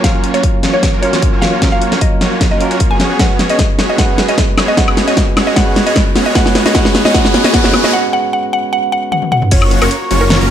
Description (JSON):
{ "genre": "future bass", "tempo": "152 BPM", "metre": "4/4", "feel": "half-time", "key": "F# major", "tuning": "A4 = 439 Hz", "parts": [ { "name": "mallet-like synth pluck", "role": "melody", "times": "0.0-10.4 s", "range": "A#4 to G#5", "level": "-18 LUFS", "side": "equal", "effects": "chorus, sidechain pumping, digital delay" }, { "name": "bell-like tine electric piano", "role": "accompaniment", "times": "0.0-9.5 s", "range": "F#3 to B4", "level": "-20 LUFS", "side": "right 3 dB", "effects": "sidechain pumping, digital delay" }, { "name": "supersaw chords", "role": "riff", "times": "0.0-10.5 s", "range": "A#3 to C#5", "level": "-18 LUFS", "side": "right 1 dB", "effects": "sidechain pumping, low-pass filter" }, { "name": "big-room dance drum kit", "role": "drums", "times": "0.0-10.4 s", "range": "crash cymbal, hi-hat, snare drum, toms, woodblock", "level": "-14 LUFS", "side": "equal", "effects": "none" }, { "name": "electronic kick drum", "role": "drums", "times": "0.0-9.6 s", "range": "none", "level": "-15 LUFS", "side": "equal", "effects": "none" }, { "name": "riser", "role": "sound effects", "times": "5.2-7.9 s", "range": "none", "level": "-23 LUFS", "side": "equal", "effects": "none" }, { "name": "airy dreamy lead", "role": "arpeggios", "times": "9.5-10.5 s", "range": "A#5 to C#6", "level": "-23 LUFS", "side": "left 1 dB", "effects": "chorus, sidechain pumping" }, { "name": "concert harp", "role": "arpeggios", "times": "9.5-10.5 s", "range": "E#4 to C#5", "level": "-22 LUFS", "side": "left 1 dB", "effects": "sidechain pumping" }, { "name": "wide detuned saw bass", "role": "bass", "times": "9.5-10.5 s", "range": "F#1", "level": "-14 LUFS", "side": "equal", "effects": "chorus, sidechain pumping" } ], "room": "light reverb", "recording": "none", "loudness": "-10 LUFS", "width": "side -10 dB against mid", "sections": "0.0-9.5 A section", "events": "build-up 0.0-9.5; drum fill 0.0-7.9, 9.1-9.5; riser 5.2-7.9; break 7.9-9.5", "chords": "0.0 F#maj7; 3.0 C#7sus4; 9.5 F#maj7" }